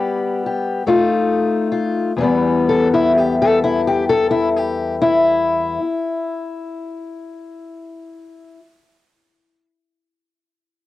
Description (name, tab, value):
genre	acoustic country blues, solo or duo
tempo	44 BPM (dotted quarters)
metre	12/8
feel	straight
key	E harmonic minor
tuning	A4 = 441 Hz
part	fingerpicked steel-string acoustic guitar	solo	0.0-8.6 s	E2 to A4	-16 LUFS	left 2 dB	cassette tape
room	moderate spring reverb, RT60 1.5 s, small room ambience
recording	home recording on cassette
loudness	-15 LUFS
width	side -15 dB against mid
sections	0.0-2.2 A section; 2.2-7.6 B section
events	slowing down 0.0-2.2; steel-string acoustic guitar solo 0.0-2.2; stop 0.0-0.9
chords	0.0 Em; 0.9 F7; 2.2 Em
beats	0.86 | 2.16 3.53 4.89 6.26